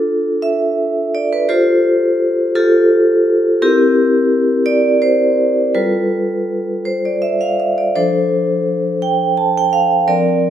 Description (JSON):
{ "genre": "classical, contemporary piece for solo vibraphone", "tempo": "56 BPM (dotted quarters)", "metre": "6/8", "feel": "rubato", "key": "unclear", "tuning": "A4 = 440 Hz", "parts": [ { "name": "vibraphone with medium hard mallets", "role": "solo", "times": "0.0-10.5 s", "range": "F3 to A5", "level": "-13 LUFS", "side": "equal", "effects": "none" } ], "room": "wet recital hall reverb, RT60 1.5 s", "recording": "minimal, uncompressed stereo recording", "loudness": "-13 LUFS", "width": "side -10 dB against mid", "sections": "0.0-10.5 A section", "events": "none", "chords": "0.0 Dm; 1.5 Fadd9; 3.6 C7; 5.8 G9; 8.0 F6" }